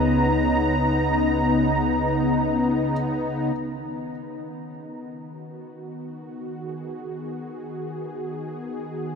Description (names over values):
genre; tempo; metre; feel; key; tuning
ambient; 51 BPM; 3/4; straight; B major; A4 = 441 Hz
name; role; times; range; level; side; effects
felt-muted upright piano; melody; 0.0-2.9 s; B4; -35 LUFS; right 1 dB; ping-pong delay
warm analog pad; sustained chords; 0.0-9.2 s; C#3 to A#5; -23 LUFS; left 1 dB; chorus
deep rumbling drone; bass; 0.0-3.5 s; C#2; -31 LUFS; equal; built-in reverb
room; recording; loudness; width
wet huge ambient reverb, RT60 8.5 s; none; -22 LUFS; side -6 dB against mid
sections
0.0-3.6 A section; 3.6-9.2 B section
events
filter sweep on analog synth pad 0.0-3.6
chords
0.0 C#7(no3); 3.6 B6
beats
| 0.04 1.22 2.40 | 3.57 4.75 5.93 | 7.10 8.28